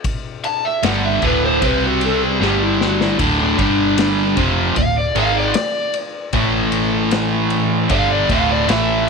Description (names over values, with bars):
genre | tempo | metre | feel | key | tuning
blues rock power trio and southern rock | 76 BPM | 4/4 | straight | unclear | A4 = 442 Hz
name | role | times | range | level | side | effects
vintage drum kit | drums | 0.0-8.9 s | kick drum, ride cymbal, snare drum | -24 LUFS | left 3 dB | none
lead guitar through a small cranked amp | melody | 0.5-9.1 s | D4 to A5 | -20 LUFS | equal | overdrive
distorted electric guitar | riff | 0.8-9.1 s | D2 to C4 | -17 LUFS | right 1 dB | distortion
vintage muted fingered electric bass | bass | 0.8-9.1 s | D1 to C2 | -24 LUFS | right 1 dB | none
room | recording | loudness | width
light reverb | 1960s-style stereo | -14 LUFS | side -4 dB against mid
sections
0.0-9.1 A section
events
lead electric guitar solo 0.0-9.1; drum fill 2.4-3.2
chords
0.0 D5; 1.6 C5; 2.4 G5; 3.2 D5; 3.6 G5; 4.4 D5; 6.3 A5; 7.9 D5